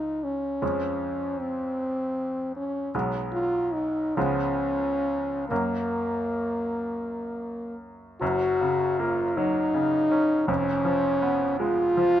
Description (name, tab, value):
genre	classical, romantic duo for French horn and grand piano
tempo	43-55 BPM (dotted quarters)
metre	6/8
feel	rubato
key	F# major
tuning	A4 = 440 Hz
part	clear French horn	melody	0.0-12.2 s	A#3 to F#4	-25 LUFS	equal	none
part	bright grand piano	accompaniment	0.0-12.2 s	E#1 to Db4	-29 LUFS	equal	none
room	light reverb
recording	close, detailed microphones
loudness	-24 LUFS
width	side -11 dB against mid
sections	0.0-8.2 A section; 8.2-12.2 B section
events	none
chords	0.0 Db; 0.6 Db/F; 2.9 G#m7/B; 4.2 C#7; 5.5 F#; 10.5 C#7/E#